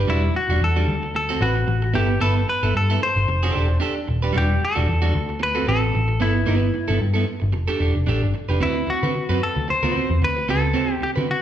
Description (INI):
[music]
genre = disco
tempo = 112 BPM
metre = 4/4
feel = swing 56% on 16ths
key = unclear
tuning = A4 = 440 Hz
[part]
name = electric guitar at the edge of break-up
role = accompaniment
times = 0.0-11.3 s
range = G3 to C5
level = -24 LUFS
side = right 4 dB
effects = none
[part]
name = picked electric bass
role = bass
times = 0.0-11.3 s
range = D#1 to D3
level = -21 LUFS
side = equal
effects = none
[part]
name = semi-hollow electric guitar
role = melody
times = 0.1-11.4 s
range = E4 to C5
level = -23 LUFS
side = left 2 dB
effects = none
[sound]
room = wet large studio reverb, RT60 1.3 s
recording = band playing live in one room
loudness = -18 LUFS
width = side -10 dB against mid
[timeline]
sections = 0.0-8.6 A section; 8.6-11.4 B section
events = none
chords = 0.1 Em9; 0.9 D7; 1.9 G69; 3.3 F69; 4.3 Em9; 5.1 D7; 6.2 G69; 7.5 F69; 8.6 D13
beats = | 0.08 0.61 1.14 1.68 | 2.21 2.74 3.27 3.81 | 4.34 4.88 5.41 5.94 | 6.48 7.01 7.54 8.08 | 8.61 9.14 9.68 10.21 | 10.75 11.28